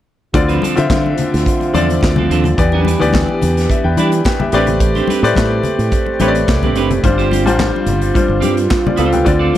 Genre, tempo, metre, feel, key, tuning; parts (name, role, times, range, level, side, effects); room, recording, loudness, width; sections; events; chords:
disco; 108 BPM; 4/4; straight; A4 = 441 Hz
clean electric guitar; accompaniment; 0.3-9.6 s; F3 to D5; -21 LUFS; right 8 dB
clear baby grand piano; accompaniment; 0.3-9.6 s; D3 to B5; -17 LUFS; left 4 dB
dark French horn section; sustained chords; 0.3-9.6 s; D3 to G4; -21 LUFS; right 4 dB
fingered electric bass with an envelope filter; bass; 0.3-9.5 s; F#1 to E3; -17 LUFS; right 1 dB
modern studio drum kit; drums; 0.3-9.6 s; handclaps, hi-hat, kick drum, snare drum; -19 LUFS; equal
congas; percussion; 0.3-9.6 s; -23 LUFS; left 6 dB
little or no reverb; -12 LUFS; side -12 dB against mid
0.3-9.6 A section
0.3 Dm7; 2.6 Em7; 4.5 Am11; 7.0 G7sus4